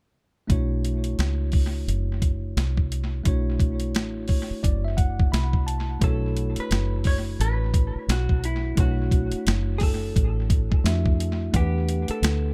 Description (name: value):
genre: hip hop, jazz-hop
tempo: 87 BPM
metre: 4/4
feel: swing 62% on 16ths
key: B minor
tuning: A4 = 438 Hz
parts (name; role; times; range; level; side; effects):
- tine electric piano; accompaniment; 0.5-12.5 s; A3 to B5; -34 LUFS; equal; analog delay
- deep dub fingered electric bass; bass; 0.5-12.5 s; F#1 to E#2; -27 LUFS; equal; none
- boom bap sampler-style drum kit; drums; 0.5-12.4 s; hi-hat, kick drum, snare drum; -26 LUFS; equal; analog delay
- vintage hollow-body jazz guitar; melody; 6.0-12.5 s; E4 to C#5; -35 LUFS; equal; analog delay
room: little or no reverb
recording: echo-heavy mix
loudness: -24 LUFS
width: mono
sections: 0.5-6.0 A section; 6.0-12.5 B section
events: tine electric piano fill 3.9-6.0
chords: 0.5 Bm11; 11.5 Em11